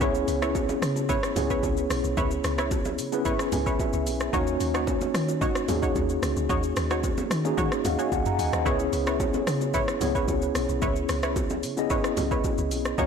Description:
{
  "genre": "amapiano",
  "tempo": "111 BPM",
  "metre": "4/4",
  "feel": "straight",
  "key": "C# dorian",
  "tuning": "A4 = 439 Hz",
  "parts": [
    { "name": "mellow tine electric piano", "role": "accompaniment", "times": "0.0-13.1 s", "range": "A#3 to A#5", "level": "-27 LUFS", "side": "left 1 dB", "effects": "medium stereo tremolo" },
    { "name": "punchy chord stab", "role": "stabs", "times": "0.0-13.1 s", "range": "D#4 to C#5", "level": "-32 LUFS", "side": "right 1 dB", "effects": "chorus, digital delay" },
    { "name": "deep log drum bass", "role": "bass", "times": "0.0-13.1 s", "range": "B1 to D#3", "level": "-30 LUFS", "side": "equal", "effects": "none" },
    { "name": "afro-pop drum kit", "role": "drums", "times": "0.0-13.1 s", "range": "hi-hat, kick drum, rim click, shaker, toms", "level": "-30 LUFS", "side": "equal", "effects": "none" },
    { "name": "congas and bongos", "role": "percussion", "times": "0.0-13.1 s", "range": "none", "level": "-35 LUFS", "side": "right 4 dB", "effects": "none" }
  ],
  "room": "light reverb",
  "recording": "blown-out, overdriven recording, overdrive",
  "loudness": "-23 LUFS",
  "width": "side -6 dB against mid",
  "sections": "0.0-13.1 A section",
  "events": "tine electric piano fill 3.3-4.3, 7.6-8.7",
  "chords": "0.0 C#m7; 4.3 D#m7; 8.7 C#m7",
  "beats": "| 0.01 0.55 1.09 1.63 | 2.17 2.71 3.25 3.79 | 4.33 4.88 5.42 5.96 | 6.50 7.04 7.58 8.12 | 8.66 9.20 9.74 10.28 | 10.82 11.36 11.90 12.44 | 12.98"
}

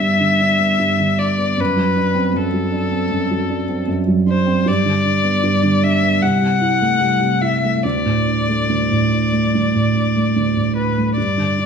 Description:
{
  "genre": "classical, slow romantic movement for piano trio",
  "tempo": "70-79 BPM",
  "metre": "4/4",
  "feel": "rubato",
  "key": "unclear",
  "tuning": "A4 = 440 Hz",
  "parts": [
    { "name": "clear violin", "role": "melody", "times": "0.0-11.7 s", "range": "A4 to F#5", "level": "-19 LUFS", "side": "left 5 dB", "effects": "none" },
    { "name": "dark baby grand piano", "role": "accompaniment", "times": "0.0-11.7 s", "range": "C2 to E4", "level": "-17 LUFS", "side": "right 2 dB", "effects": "none" }
  ],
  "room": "wet recital hall reverb, RT60 1.4 s",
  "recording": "minimal, uncompressed stereo recording",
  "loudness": "-15 LUFS",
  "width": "side -6 dB against mid",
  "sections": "0.0-11.7 A section",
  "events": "none",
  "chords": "0.0 G; 1.6 D7/F#; 4.7 G; 6.2 Am/C; 7.8 D5",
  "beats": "0.01 0.80 | 1.60 2.37 3.14 3.91 | 4.67 5.44 6.22 7.01 | 7.84 8.69 9.52 10.35 | 11.17"
}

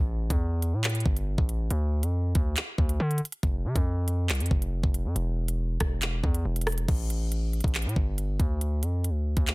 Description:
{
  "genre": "hip hop, drill",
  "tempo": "139 BPM",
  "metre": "4/4",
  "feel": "half-time",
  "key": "unclear",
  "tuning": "A4 = 445 Hz",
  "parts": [
    { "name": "distorted 808-style bass", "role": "bass", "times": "0.0-9.5 s", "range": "E1 to D3", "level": "-27 LUFS", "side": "equal", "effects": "distortion" },
    { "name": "drill drum kit", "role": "drums", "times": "0.3-9.5 s", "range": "crash cymbal, handclaps, hi-hat, kick drum, rim click", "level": "-27 LUFS", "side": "equal", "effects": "none" }
  ],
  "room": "little or no reverb",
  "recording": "dense, heavily limited modern master",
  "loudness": "-25 LUFS",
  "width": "side -24 dB against mid",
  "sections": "0.0-6.9 A section; 6.9-9.5 B section",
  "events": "none",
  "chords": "none",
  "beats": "0.41 0.84 1.27 | 1.71 2.14 2.57 3.00 | 3.43 3.86 4.29 4.73 | 5.16 5.59 6.02 6.45 | 6.88 7.32 7.75 8.18 | 8.61 9.04 9.47"
}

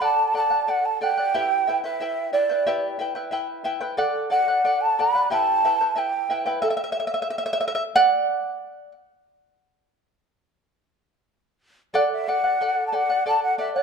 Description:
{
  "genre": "andean folk",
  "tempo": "91 BPM",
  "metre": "2/4",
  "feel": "straight",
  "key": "unclear",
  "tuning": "A4 = 440 Hz",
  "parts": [
    { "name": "breathy mellow large quena", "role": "melody", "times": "0.0-6.5, 11.9-13.8 s", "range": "D5 to B5", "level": "-21 LUFS", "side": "right 1 dB", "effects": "none" },
    { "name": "charango", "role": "accompaniment", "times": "0.0-8.9, 11.9-13.8 s", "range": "E4 to G5", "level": "-24 LUFS", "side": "right 1 dB", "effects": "none" }
  ],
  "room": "moderate recital hall reverb, RT60 1.5 s",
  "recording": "dark, warm production",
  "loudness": "-20 LUFS",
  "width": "side -6 dB against mid",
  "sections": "0.0-6.6 A section; 6.6-11.9 B section; 11.9-13.8 C section",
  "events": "charango solo 6.6-11.9",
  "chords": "0.0 D; 1.3 Em; 4.0 D; 5.3 Em; 6.6 N.C.; 11.9 D",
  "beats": "| 0.01 0.68 | 1.34 2.00 | 2.66 3.32 | 3.99 4.65 | 5.31 5.97 | 6.64 7.30 | 7.96 8.63 | 9.29 9.95 | 10.62 11.28 | 11.94 12.60 | 13.27"
}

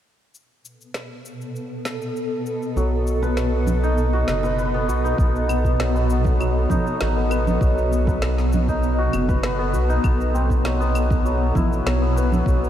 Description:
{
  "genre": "organic downtempo",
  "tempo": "99 BPM",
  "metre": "4/4",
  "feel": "straight",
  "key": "unclear",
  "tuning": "A4 = 440 Hz",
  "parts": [
    { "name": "granular cloud pad", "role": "sustained chords", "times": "1.1-12.7 s", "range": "B2 to E6", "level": "-25 LUFS", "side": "left 1 dB", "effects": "built-in reverb, sidechain pumping" },
    { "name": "electronic shaker, snare drum and claves", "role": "drums", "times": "0.3-12.7 s", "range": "none", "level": "-33 LUFS", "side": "equal", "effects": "studio reverb" },
    { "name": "santur", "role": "arpeggios", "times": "2.8-12.7 s", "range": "F#3 to B4", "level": "-25 LUFS", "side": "equal", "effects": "vintage 12-bit sampler grit, low-pass filter, tape echo" },
    { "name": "round analog bass", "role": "bass", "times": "2.8-12.7 s", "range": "F#1 to B1", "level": "-22 LUFS", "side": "equal", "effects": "sidechain pumping" },
    { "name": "congas and bongos", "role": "percussion", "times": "2.8-12.4 s", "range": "none", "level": "-31 LUFS", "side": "right 3 dB", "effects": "none" },
    { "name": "electronic kick drum", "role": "drums", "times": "5.2-12.6 s", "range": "none", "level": "-22 LUFS", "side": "equal", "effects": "studio reverb" }
  ],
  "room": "moderate huge ambient reverb, RT60 7.5 s",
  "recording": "dreamy mix soaked in reverb",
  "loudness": "-18 LUFS",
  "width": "side -11 dB against mid",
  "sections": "0.3-5.2 A section; 5.2-12.7 B section",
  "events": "none",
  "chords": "0.3 B7; 10.0 Cmaj7",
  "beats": "| 0.34 0.95 1.55 2.16 | 2.77 3.37 3.98 4.58 | 5.19 5.80 6.40 7.01 | 7.62 8.22 8.83 9.43 | 10.04 10.65 11.25 11.86 | 12.46"
}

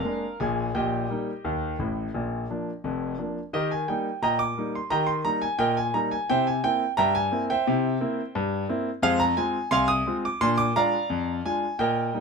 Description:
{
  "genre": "ragtime piano",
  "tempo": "87 BPM",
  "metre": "2/4",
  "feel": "straight",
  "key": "Eb major",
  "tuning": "A4 = 440 Hz",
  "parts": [
    { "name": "bright concert grand piano", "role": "solo", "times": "0.0-12.2 s", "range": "F1 to Eb6", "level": "-23 LUFS", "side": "equal", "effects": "none" }
  ],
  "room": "little or no reverb",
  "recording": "close, detailed microphones",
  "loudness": "-23 LUFS",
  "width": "side -4 dB against mid",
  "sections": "0.0-3.5 A section; 3.5-12.2 A section",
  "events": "none",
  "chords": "0.0 Bb7; 0.7 Eb/Bb; 2.1 Bb; 3.5 Eb; 6.3 C7; 9.0 Fm; 10.4 Bb7",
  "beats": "0.05 | 0.75 1.45 | 2.14 2.84 | 3.54 4.23 | 4.92 5.60 | 6.29 6.98 | 7.66 8.35 | 9.03 9.72 | 10.41 11.10 | 11.79"
}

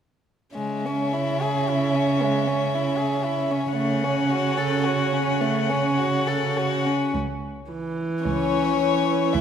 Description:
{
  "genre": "classical, slow romantic movement for string quartet",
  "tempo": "49-58 BPM",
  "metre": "3/4",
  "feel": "rubato",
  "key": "C# minor",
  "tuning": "A4 = 443 Hz",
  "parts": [
    { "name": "warm violin", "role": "melody", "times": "0.6-9.4 s", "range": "C#5 to F#5", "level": "-29 LUFS", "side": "left 10 dB", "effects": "none" },
    { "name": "warm violin", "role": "second line", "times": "0.6-9.4 s", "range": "G#3 to A4", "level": "-26 LUFS", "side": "left 3 dB", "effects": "none" },
    { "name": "warm viola", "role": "accompaniment", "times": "0.6-9.4 s", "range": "E3 to C#4", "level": "-26 LUFS", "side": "right 3 dB", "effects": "none" },
    { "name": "warm cello", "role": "bass", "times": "0.6-9.4 s", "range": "C#2 to C#3", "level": "-28 LUFS", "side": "right 5 dB", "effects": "none" }
  ],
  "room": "wet concert hall reverb, RT60 1.9 s",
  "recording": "none",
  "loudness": "-21 LUFS",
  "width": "side -8 dB against mid",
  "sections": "0.6-7.2 A section; 7.2-9.4 B section",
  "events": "none",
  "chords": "0.6 C#m",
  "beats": "| 0.57 1.67 2.72 | 3.75 4.84 5.98 | 7.16 8.26 9.35"
}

